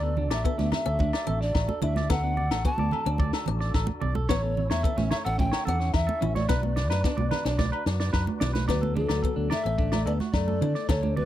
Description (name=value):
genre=highlife guitar band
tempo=109 BPM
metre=4/4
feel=straight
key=D major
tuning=A4 = 440 Hz
part: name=mellow hollow polished pan flute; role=melody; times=0.0-11.3 s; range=A4 to A5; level=-31 LUFS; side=equal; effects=tape echo
part: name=fingerpicked swing-style acoustic guitar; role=accompaniment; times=0.0-10.9 s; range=A3 to E4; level=-35 LUFS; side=left 12 dB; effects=none
part: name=tonewheel organ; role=sustained chords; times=0.0-8.7 s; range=C#4 to B4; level=-41 LUFS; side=right 1 dB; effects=slow rotary speaker, overdrive, chorus vibrato
part: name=clean electric guitar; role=arpeggios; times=0.0-11.3 s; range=C#4 to D5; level=-35 LUFS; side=right 5 dB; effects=tape echo
part: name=fingered electric bass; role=bass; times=0.0-11.3 s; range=A1 to D3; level=-28 LUFS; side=equal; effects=none
part: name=congas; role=percussion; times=0.2-11.3 s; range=none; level=-33 LUFS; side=right 6 dB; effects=none
part: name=compact cocktail drum kit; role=drums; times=0.3-11.0 s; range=kick drum, snare drum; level=-29 LUFS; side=equal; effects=none
part: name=agogo bells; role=percussion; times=0.3-11.0 s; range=none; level=-38 LUFS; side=left 30 dB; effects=none
part: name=breathy alto saxophone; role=second line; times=8.7-11.3 s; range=F#3 to B3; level=-34 LUFS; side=left 19 dB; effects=none
room=little or no reverb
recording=none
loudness=-24 LUFS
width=side -12 dB against mid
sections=0.0-8.7 A section; 8.7-11.3 B section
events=drum fill 6.5-8.7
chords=0.0 D; 4.3 A; 6.5 Bm; 8.7 D